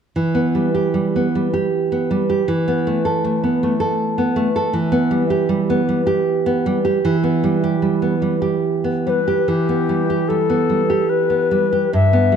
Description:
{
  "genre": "romantic duo for recorder and classical guitar",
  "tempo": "68-82 BPM",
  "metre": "3/4",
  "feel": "rubato",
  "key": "E minor",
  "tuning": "A4 = 439 Hz",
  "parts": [
    { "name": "nylon-string guitar", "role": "accompaniment", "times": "0.2-12.4 s", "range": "G2 to A4", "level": "-16 LUFS", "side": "right 2 dB", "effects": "none" },
    { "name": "alto recorder", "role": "melody", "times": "9.1-12.4 s", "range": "G4 to E5", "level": "-18 LUFS", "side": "left 8 dB", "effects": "none" }
  ],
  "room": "light reverb",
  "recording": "dark, warm production",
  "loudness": "-16 LUFS",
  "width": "side -7 dB against mid",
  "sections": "0.2-9.5 A section; 9.5-12.4 B section",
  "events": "none",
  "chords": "0.2 Em; 2.5 Esus4; 4.7 Em",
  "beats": "| 0.15 0.95 1.73 | 2.48 3.24 3.98 | 4.73 5.49 6.27 | 7.05 7.82 8.63 | 9.49 10.29 11.09 | 11.93"
}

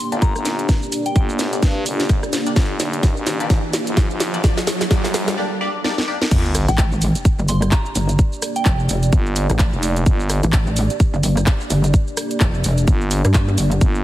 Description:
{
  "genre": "bass house",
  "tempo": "128 BPM",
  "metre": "4/4",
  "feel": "swing 58% on 16ths",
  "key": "G minor",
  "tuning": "A4 = 440 Hz",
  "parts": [
    { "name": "soft synth bell", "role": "melody", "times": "0.0-1.2, 6.7-8.7 s", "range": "G5 to C6", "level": "-28 LUFS", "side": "left 1 dB", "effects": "chorus, phaser, ping-pong delay" },
    { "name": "dark analog pad", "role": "sustained chords", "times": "0.0-14.0 s", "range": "Bb3 to D5", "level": "-27 LUFS", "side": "right 1 dB", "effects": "chorus, sidechain pumping" },
    { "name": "riser and sub drop", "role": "sound effects", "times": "0.8-8.2 s", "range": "none", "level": "-28 LUFS", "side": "right 1 dB", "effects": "none" },
    { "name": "band-passed chord stab", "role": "stabs", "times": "0.1-6.2 s", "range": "Bb3 to D5", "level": "-28 LUFS", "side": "left 3 dB", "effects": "phaser, lush chorus, sidechain pumping, ping-pong delay" },
    { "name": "growling FM bass", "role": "bass", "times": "0.1-14.0 s", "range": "F1 to G2", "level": "-22 LUFS", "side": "equal", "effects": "tube saturation, sidechain pumping, high-pass filter" },
    { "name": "garage drum kit", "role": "drums", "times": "0.1-14.0 s", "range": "crash cymbal, handclaps, hi-hat, rim click, shaker, snare drum", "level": "-24 LUFS", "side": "equal", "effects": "none" },
    { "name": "electronic kick drum", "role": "drums", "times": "0.2-13.9 s", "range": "none", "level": "-16 LUFS", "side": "equal", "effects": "none" },
    { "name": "pulsing pluck wobble bass", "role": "bass", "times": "6.7-13.8 s", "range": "F1 to G2", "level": "-17 LUFS", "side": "equal", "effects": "chorus, sidechain pumping" }
  ],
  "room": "light reverb, digital ambience",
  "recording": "heavily compressed radio sound",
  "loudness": "-16 LUFS",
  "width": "side -14 dB against mid",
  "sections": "0.0-6.3 A section; 6.3-14.0 B section",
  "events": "build-up 0.0-6.3; drum fill 0.0-5.4, 5.8-6.3; riser 0.8-5.4; break 5.4-6.3; drop 6.3-14.0; impact 6.3-8.2",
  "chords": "0.0 Gm",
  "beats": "0.22 | 0.69 1.16 1.63 2.10 | 2.56 3.03 3.50 3.97 | 4.44 4.91 5.38 5.84 | 6.31 6.78 7.25 7.72 | 8.19 8.66 9.13 9.60 | 10.06 10.53 11.00 11.47 | 11.94 12.41 12.88 13.35 | 13.81"
}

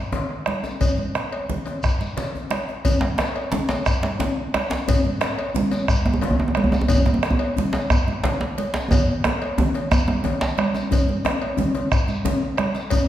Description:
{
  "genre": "west african traditional, West African drum ensemble",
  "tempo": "119 BPM (dotted quarters)",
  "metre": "12/8",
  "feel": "straight",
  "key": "none",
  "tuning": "none",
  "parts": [
    { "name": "bombo", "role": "percussion", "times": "0.1-13.1 s", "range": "none", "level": "-24 LUFS", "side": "equal", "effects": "none" },
    { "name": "congas", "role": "percussion", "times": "0.1-13.1 s", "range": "none", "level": "-28 LUFS", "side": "right 3 dB", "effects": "none" },
    { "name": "cowbell", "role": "percussion", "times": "0.1-13.1 s", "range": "none", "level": "-30 LUFS", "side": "left 1 dB", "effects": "none" },
    { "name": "djembe", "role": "percussion", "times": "0.1-13.1 s", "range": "none", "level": "-27 LUFS", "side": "left 3 dB", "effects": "none" },
    { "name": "shekere", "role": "percussion", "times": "0.6-13.1 s", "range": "none", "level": "-30 LUFS", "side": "left 1 dB", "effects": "none" },
    { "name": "djembe", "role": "percussion", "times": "3.0-10.6 s", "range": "none", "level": "-23 LUFS", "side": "right 1 dB", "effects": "none" }
  ],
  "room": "wet recital hall reverb, RT60 1.5 s",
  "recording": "recorded in a church or concert hall",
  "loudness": "-19 LUFS",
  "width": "side -12 dB against mid",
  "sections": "0.0-2.8 A section; 2.8-10.9 B section; 10.9-13.1 C section",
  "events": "drum fill 2.3-2.8, 8.9-10.9",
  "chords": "none",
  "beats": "0.29 | 0.81 1.31 1.82 2.33 | 2.84 3.35 3.86 4.37 | 4.87 5.38 5.89 6.39 | 6.90 7.40 7.91 8.41 | 8.91 9.41 9.91 10.42 | 10.92 11.42 11.92 12.42 | 12.91"
}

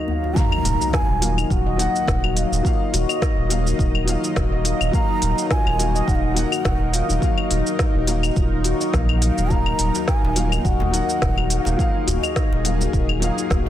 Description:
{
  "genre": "organic downtempo",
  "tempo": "105 BPM",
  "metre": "4/4",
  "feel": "swing 55% on 16ths",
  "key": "Eb minor",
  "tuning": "A4 = 440 Hz",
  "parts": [
    { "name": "breathy mellow bass bansuri", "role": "melody", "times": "0.0-12.1 s", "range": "F5 to Bb5", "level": "-27 LUFS", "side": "right 2 dB", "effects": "ping-pong delay" },
    { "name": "felt-muted upright piano", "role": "accompaniment", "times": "0.0-13.7 s", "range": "Gb3 to Gb5", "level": "-28 LUFS", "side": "left 4 dB", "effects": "sidechain pumping, ping-pong delay" },
    { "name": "warm analog pad", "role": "sustained chords", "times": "0.0-13.7 s", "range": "Eb3 to Eb5", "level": "-29 LUFS", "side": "right 1 dB", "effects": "chorus, phaser, sidechain pumping" },
    { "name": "djembe", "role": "percussion", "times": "0.1-0.3, 10.0-13.7 s", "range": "none", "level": "-29 LUFS", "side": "left 1 dB", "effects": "none" },
    { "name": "handpan", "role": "arpeggios", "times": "0.2-13.7 s", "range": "Eb4 to Eb5", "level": "-27 LUFS", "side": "left 5 dB", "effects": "ping-pong delay" },
    { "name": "electronic kick drum", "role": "drums", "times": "0.4-13.6 s", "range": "none", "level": "-22 LUFS", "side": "equal", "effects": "none" },
    { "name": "organic electronic drum kit", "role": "drums", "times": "0.4-13.6 s", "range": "claves, hi-hat, shaker, snare drum", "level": "-26 LUFS", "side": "left 1 dB", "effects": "none" },
    { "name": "impact", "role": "sound effects", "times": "0.4-2.6 s", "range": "none", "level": "-29 LUFS", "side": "right 1 dB", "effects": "none" },
    { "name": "warm sub bass", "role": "bass", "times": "0.6-13.7 s", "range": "Eb1 to Bb1", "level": "-22 LUFS", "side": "equal", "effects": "sidechain pumping" }
  ],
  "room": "light reverb, small room ambience",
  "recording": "dense, heavily limited modern master",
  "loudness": "-18 LUFS",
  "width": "side -12 dB against mid",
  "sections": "0.4-13.7 A section",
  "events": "impact 0.4-2.6",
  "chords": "0.4 Ebmadd9",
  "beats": "| 0.36 0.94 1.51 2.08 | 2.65 3.22 3.79 4.36 | 4.93 5.51 6.08 6.65 | 7.22 7.79 8.36 8.94 | 9.51 10.08 10.65 11.22 | 11.79 12.36 12.94 13.51"
}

